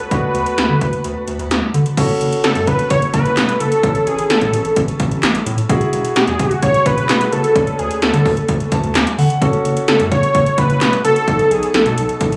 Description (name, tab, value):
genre	synth-pop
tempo	129 BPM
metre	4/4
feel	straight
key	B dorian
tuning	A4 = 441 Hz
part	unison lead	melody	0.0-12.2 s	G#4 to C#5	-20 LUFS	equal	digital delay, shimmer reverb
part	warm concert grand piano	accompaniment	0.0-12.4 s	B3 to A5	-24 LUFS	equal	shimmer reverb
part	80s electronic pad drums	drums	0.0-12.4 s	crash cymbal, handclaps, hi-hat, kick drum, snare drum	-21 LUFS	equal	none
part	round analog bass	bass	0.1-12.3 s	E1 to D3	-22 LUFS	equal	none
room	moderate digital room reverb, RT60 1.2 s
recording	recorded on a phone in the room, club ambience, compression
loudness	-16 LUFS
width	mono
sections	0.0-2.0 A section; 2.0-12.4 B section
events	grand piano fill 8.5-9.4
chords	0.0 Bm; 2.0 F#m; 3.8 A; 5.7 Eadd9; 7.6 Bmadd9/D; 9.4 F#m; 11.3 B7